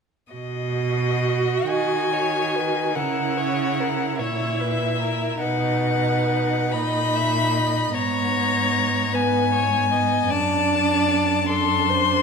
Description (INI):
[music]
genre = classical, slow romantic movement for string quartet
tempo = 43-51 BPM (dotted quarters)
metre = 6/8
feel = rubato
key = B major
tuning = A4 = 440 Hz
[part]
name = rich violin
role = melody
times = 0.3-12.2 s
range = D#5 to C6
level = -23 LUFS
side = left 6 dB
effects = none
[part]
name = rich viola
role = accompaniment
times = 0.3-12.2 s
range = B3 to F#4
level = -26 LUFS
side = right 4 dB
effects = none
[part]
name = clear cello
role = bass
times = 0.3-12.2 s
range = F#2 to D#3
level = -26 LUFS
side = right 4 dB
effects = none
[part]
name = rich violin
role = second line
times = 1.7-12.2 s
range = A4 to E5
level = -27 LUFS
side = left 2 dB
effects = none
[sound]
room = wet recital hall reverb, RT60 1.5 s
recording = minimal, uncompressed stereo recording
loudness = -19 LUFS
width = side -5 dB against mid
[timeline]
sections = 0.3-12.2 A section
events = none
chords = 0.3 B; 3.0 F#7/C#; 5.4 B; 7.9 G#m; 10.3 D7/F#